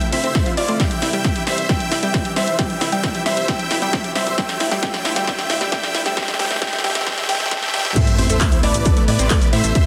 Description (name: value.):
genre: uplifting trance.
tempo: 134 BPM.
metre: 4/4.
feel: straight.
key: A minor.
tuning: A4 = 440 Hz.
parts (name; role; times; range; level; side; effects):
big supersaw lead; melody; 0.0-9.9 s; F4 to G5; -26 LUFS; equal; phaser, sidechain pumping, dub echo.
bright concert grand piano; second line; 0.0-9.9 s; D5 to G5; -30 LUFS; equal; sidechain pumping, delay.
clear studio string section; sustained chords; 0.0-9.9 s; C3 to G4; -32 LUFS; equal; sidechain pumping.
punchy analog drum machine; drums; 0.0-9.8 s; crash cymbal, handclaps, hi-hat, shaker, snare drum; -26 LUFS; equal; high-pass filter on snare, studio reverb, high-pass filter on hats, high-pass filter on cymbals, high-pass filter on perc.
riser and sub drop; sound effects; 0.1-9.8 s; none; -31 LUFS; equal; none.
analog pluck; arpeggios; 0.1-9.7 s; G3 to A4; -29 LUFS; equal; chorus, sidechain pumping, delay.
plucky analog bass; bass; 0.1-9.7 s; D1 to A2; -28 LUFS; equal; none.
electronic kick drum; drums; 0.3-9.8 s; none; -22 LUFS; equal; overdrive, studio reverb.
room: moderate digital room reverb, RT60 1.2 s, digital ambience.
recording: dense, heavily limited modern master, high-pass filter.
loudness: -19 LUFS.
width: mono.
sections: 0.0-8.0 A section; 8.0-9.9 B section.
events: build-up 0.0-8.0; drum fill 0.0-8.0; filter sweep 0.0-8.0; drop 8.0-9.9; impact 8.0-9.8.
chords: 0.0 Fmaj7; 0.8 C; 4.4 Dm; 8.0 Amadd9.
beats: 0.35 | 0.80 1.25 1.69 2.14 | 2.59 3.04 3.48 3.93 | 4.38 4.83 5.28 5.72 | 6.17 6.62 7.07 7.51 | 7.96 8.41 8.86 9.30 | 9.75.